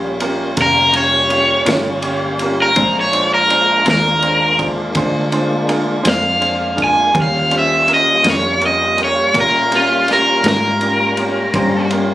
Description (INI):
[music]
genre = slow blues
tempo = 55 BPM (dotted quarters)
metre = 12/8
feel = straight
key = unclear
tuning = A4 = 442 Hz
[part]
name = clear upright piano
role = accompaniment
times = 0.0-12.1 s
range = Db4 to Db5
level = -21 LUFS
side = right 2 dB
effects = none
[part]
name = tonewheel organ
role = sustained chords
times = 0.0-12.1 s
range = G3 to F4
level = -23 LUFS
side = left 1 dB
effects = slow rotary speaker, chorus vibrato
[part]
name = vintage muted fingered electric bass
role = bass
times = 0.0-12.1 s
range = F1 to Bb2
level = -24 LUFS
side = equal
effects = none
[part]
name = vintage drum kit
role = drums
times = 0.2-12.1 s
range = kick drum, ride cymbal, snare drum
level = -23 LUFS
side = equal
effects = none
[part]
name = crunchy overdriven guitar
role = melody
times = 0.6-11.9 s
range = F4 to Ab5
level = -13 LUFS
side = equal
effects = none
[part]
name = clean electric guitar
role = accompaniment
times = 1.7-10.7 s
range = Bb2 to F4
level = -22 LUFS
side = left 4 dB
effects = tremolo
[sound]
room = light reverb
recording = recorded on a phone in the room, club reverb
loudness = -12 LUFS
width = side -14 dB against mid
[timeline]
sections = 0.0-12.1 A section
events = overdriven electric guitar solo 0.0-12.1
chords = 0.0 Eb9 (rootless); 2.8 Bb9; 7.1 Eb9